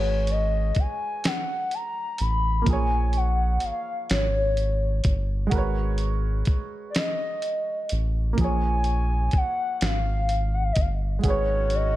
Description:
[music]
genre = slow six-eight R&B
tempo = 42 BPM (dotted quarters)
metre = 6/8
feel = straight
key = G# dorian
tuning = A4 = 440 Hz
[part]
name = hollow clarinet-like synth lead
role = melody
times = 0.0-12.0 s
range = C#5 to B5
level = -27 LUFS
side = left 2 dB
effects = chorus
[part]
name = dark baby grand piano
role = accompaniment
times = 0.0-12.0 s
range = E#3 to G#5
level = -32 LUFS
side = right 4 dB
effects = none
[part]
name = round analog bass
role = bass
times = 0.0-12.0 s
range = G1 to A#1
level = -24 LUFS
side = equal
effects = none
[part]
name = dusty soul sampler-style drum kit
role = drums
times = 0.3-11.9 s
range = hi-hat, kick drum, snare drum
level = -26 LUFS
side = equal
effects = none
[part]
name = warm horn section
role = stabs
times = 11.2-12.0 s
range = D#3 to F#4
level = -34 LUFS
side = left 7 dB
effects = none
[sound]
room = little or no reverb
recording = none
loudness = -22 LUFS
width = side -15 dB against mid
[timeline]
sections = 0.0-12.0 A section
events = none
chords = 0.0 G#m7; 2.7 A#m7; 5.5 G#m11; 8.4 A#m7; 11.2 G#m7

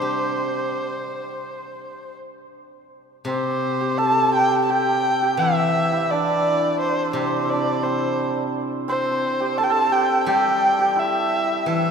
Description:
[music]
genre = chinese traditional, Chinese chamber ensemble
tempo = 85 BPM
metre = 4/4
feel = rubato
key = C gong mode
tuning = A4 = 440 Hz
[part]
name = dark erhu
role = melody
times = 0.0-11.9 s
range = C5 to A5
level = -21 LUFS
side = left 1 dB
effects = none
[part]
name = steel-string zither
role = accompaniment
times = 0.0-11.9 s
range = C3 to G4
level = -27 LUFS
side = left 2 dB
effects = none
[part]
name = hammered dulcimer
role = second line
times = 3.3-11.9 s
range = C4 to A4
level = -24 LUFS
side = right 5 dB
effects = none
[sound]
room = wet cathedral reverb, RT60 4.7 s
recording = recorded in a church or concert hall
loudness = -18 LUFS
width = side -6 dB against mid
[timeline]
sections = 0.0-2.9 A section; 2.9-11.9 B section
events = none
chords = none

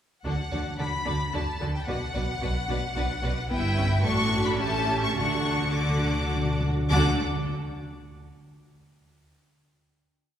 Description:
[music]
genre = quick classical-period movement for symphony orchestra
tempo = 103-112 BPM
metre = 3/4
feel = straight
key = D major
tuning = A4 = 440 Hz
[part]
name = clear studio violin section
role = melody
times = 0.2-7.2 s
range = F#5 to D6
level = -30 LUFS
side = left 3 dB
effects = none
[part]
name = rich studio violin section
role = second line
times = 0.2-7.2 s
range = A4 to F#5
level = -34 LUFS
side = left 1 dB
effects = none
[part]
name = rich studio viola section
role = accompaniment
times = 0.2-7.2 s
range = B3 to G4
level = -33 LUFS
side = right 2 dB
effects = none
[part]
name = rich studio cello section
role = bass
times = 0.2-7.2 s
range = G2 to D3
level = -31 LUFS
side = right 1 dB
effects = none
[part]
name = rich studio double bass section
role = bass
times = 0.2-7.2 s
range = G1 to D2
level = -30 LUFS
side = right 1 dB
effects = none
[part]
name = timpani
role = percussion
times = 5.2-7.2 s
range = D3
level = -30 LUFS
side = left 2 dB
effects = none
[sound]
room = wet concert hall reverb, RT60 2.4 s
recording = recorded in a church or concert hall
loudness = -24 LUFS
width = side -10 dB against mid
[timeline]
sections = 0.2-6.9 theme; 6.9-8.6 final chord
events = timpani fill 5.2-6.9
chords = 0.2 D; 1.9 Bm; 3.5 Em/G; 4.0 D/A; 4.6 A7; 5.2 D

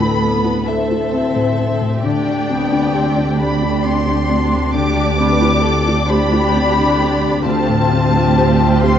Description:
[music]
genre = cinematic, emotional film score for orchestra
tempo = 44 BPM (dotted quarters)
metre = 6/8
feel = rubato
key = unclear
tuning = A4 = 440 Hz
[part]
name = warm studio violin section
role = melody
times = 0.0-9.0 s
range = E5 to D6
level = -21 LUFS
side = left 3 dB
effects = none
[part]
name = warm studio violin section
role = second line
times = 0.0-9.0 s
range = G4 to D5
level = -22 LUFS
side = left 2 dB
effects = none
[part]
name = felt-muted upright piano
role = accompaniment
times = 0.0-9.0 s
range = D2 to A4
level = -20 LUFS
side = left 2 dB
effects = none
[part]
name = rich studio viola section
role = accompaniment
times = 0.0-9.0 s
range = A3 to G4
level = -23 LUFS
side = right 1 dB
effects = none
[part]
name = concert harp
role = arpeggios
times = 0.0-9.0 s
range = D3 to E5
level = -23 LUFS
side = left 7 dB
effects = none
[part]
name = warm studio double bass section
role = bass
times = 0.0-9.0 s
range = D2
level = -21 LUFS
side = right 5 dB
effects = none
[part]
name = warm symphonic cello section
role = bass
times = 0.0-9.0 s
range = D2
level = -22 LUFS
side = right 3 dB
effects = none
[sound]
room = moderate scoring stage reverb, RT60 1.8 s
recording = dark, warm production, nothing above 7.9 kHz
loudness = -13 LUFS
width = side -9 dB against mid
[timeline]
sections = 0.0-9.0 A section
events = none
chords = 0.0 Amadd9/D; 2.0 Gsus4/D; 4.7 Cadd9/D; 7.5 Fadd9/D

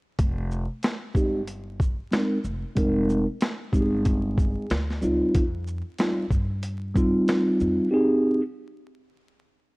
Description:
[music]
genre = hip hop, jazz-hop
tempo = 93 BPM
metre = 4/4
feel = swing 61% on 16ths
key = F minor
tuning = A4 = 435 Hz
[part]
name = upright bass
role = bass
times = 0.2-7.8 s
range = F1 to G2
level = -30 LUFS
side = equal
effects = none
[part]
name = boom bap sampler-style drum kit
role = drums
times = 0.2-7.8 s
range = hi-hat, kick drum, shaker, snare drum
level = -25 LUFS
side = equal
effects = none
[part]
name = mellow tine electric piano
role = accompaniment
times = 1.1-8.4 s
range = G3 to Bb4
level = -22 LUFS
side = equal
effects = phaser, low-pass filter
[sound]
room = digital ambience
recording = dry, gritty hardware recording, vinyl crackle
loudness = -22 LUFS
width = side -25 dB against mid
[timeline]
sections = 0.2-9.8 A section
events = filter sweep on tine electric piano 0.2-9.8; break 7.9-9.8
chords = 0.2 Fm7; 4.7 Dbmaj9#11; 5.3 F7sus2

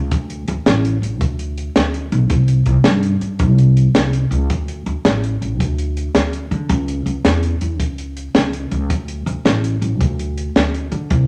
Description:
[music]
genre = highlife guitar band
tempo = 109 BPM (dotted quarters)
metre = 12/8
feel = straight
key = unclear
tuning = A4 = 440 Hz
[part]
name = upright bass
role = bass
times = 0.0-11.3 s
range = A1 to D3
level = -20 LUFS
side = equal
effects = none
[part]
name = compact cocktail drum kit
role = drums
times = 0.1-11.2 s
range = hi-hat, kick drum, snare drum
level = -20 LUFS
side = equal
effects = none
[sound]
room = wet large studio reverb, RT60 1.1 s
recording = none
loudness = -18 LUFS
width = mono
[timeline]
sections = 0.0-11.3 A section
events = none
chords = none

